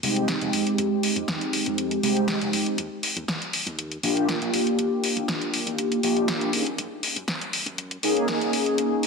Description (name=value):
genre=nu-disco, nu disco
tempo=120 BPM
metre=4/4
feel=straight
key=unclear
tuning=A4 = 440 Hz
part: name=mellow synth brass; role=accompaniment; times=0.0-9.1 s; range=Ab3 to Ab4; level=-24 LUFS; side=equal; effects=chorus, tape echo
part: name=slap bass with an envelope filter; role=bass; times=0.0-8.9 s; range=F1 to Gb2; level=-37 LUFS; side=equal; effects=tube saturation, high-pass filter
part: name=house drum kit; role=drums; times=0.0-9.1 s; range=hi-hat, snare drum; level=-27 LUFS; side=left 1 dB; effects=none
room=wet plate reverb, RT60 1.7 s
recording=dense, heavily limited modern master, high-pass filter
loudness=-22 LUFS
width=side -4 dB against mid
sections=0.0-9.1 A section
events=build-up 0.0-9.1; filter sweep on analog polysynth 0.0-9.1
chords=0.0 Fm9; 2.8 Ebmaj9; 6.5 Gb69